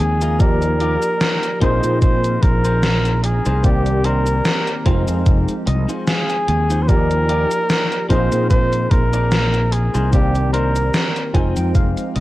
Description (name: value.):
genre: vaporwave.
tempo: 74 BPM.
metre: 4/4.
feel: swing 55% on 16ths.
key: F dorian.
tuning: A4 = 440 Hz.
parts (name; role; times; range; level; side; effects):
warm flugelhorn; melody; 0.0-11.3 s; G4 to C5; -21 LUFS; equal; vintage 12-bit sampler grit, tape echo.
tine electric piano; accompaniment; 0.0-12.2 s; Eb3 to D5; -23 LUFS; equal; medium stereo tremolo, ensemble chorus, analog delay.
clean electric guitar; riff; 0.0-12.2 s; D4 to Ab5; -29 LUFS; left 2 dB; wide subtle chorus, vintage 12-bit sampler grit, analog delay.
fretless electric bass; bass; 0.0-12.2 s; F1 to Bb2; -18 LUFS; equal; lush chorus.
gated 80s digital drum machine; drums; 0.2-12.2 s; cabasa, hi-hat, snare drum; -22 LUFS; equal; gated reverb, gated reverb snare.
electronic kick drum; drums; 0.4-11.9 s; none; -16 LUFS; equal; none.
room: light reverb.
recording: cassette tape.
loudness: -15 LUFS.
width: side -16 dB against mid.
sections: 0.0-12.2 A section.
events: clean electric guitar fill 0.0-0.4, 5.3-6.9, 10.9-12.2.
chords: 0.4 Ebmaj9; 1.6 Bb9sus4; 3.6 Cm9; 4.9 Fm7; 6.9 Ebmaj9; 8.1 Bb9sus4; 10.1 Cm9; 11.3 Fm7.